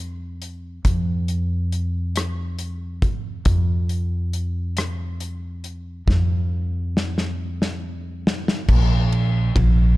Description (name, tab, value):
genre	six-eight pop ballad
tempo	46 BPM (dotted quarters)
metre	6/8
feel	straight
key	unclear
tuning	A4 = 440 Hz
part	upright bass	bass	0.0-10.0 s	Bb1 to F2	-21 LUFS	equal	none
part	modern studio drum kit	drums	0.4-9.8 s	crash cymbal, hi-hat, kick drum, ride cymbal, rim click, snare drum	-23 LUFS	equal	none
room	little or no reverb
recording	none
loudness	-20 LUFS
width	side -18 dB against mid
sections	0.0-8.7 A section; 8.7-10.0 B section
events	drum fill 6.1-8.7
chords	none